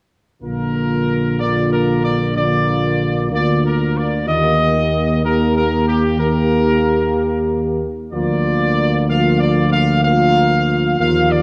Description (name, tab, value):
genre	classical, ceremonial fanfare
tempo	62 BPM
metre	4/4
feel	straight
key	Bb major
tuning	A4 = 444 Hz
part	bright trumpet section	melody	0.4-11.4 s	G4 to F5	-22 LUFS	equal	none
part	clear trombone section	sustained chords	0.4-11.4 s	D3 to Bb3	-25 LUFS	equal	none
part	mellow French horn section	sustained chords	0.4-11.4 s	Bb3 to G4	-23 LUFS	equal	none
part	dark tuba	bass	0.4-11.4 s	Bb1 to Eb2	-21 LUFS	equal	none
room	wet concert hall reverb, RT60 2.2 s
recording	dark, warm production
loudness	-17 LUFS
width	mono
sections	0.4-11.4 A section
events	none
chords	0.4 Bb; 4.3 Eb; 8.1 Bb/D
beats	| 0.43 1.40 2.36 3.32 | 4.28 5.24 6.20 7.16 | 8.12 9.09 10.04 11.00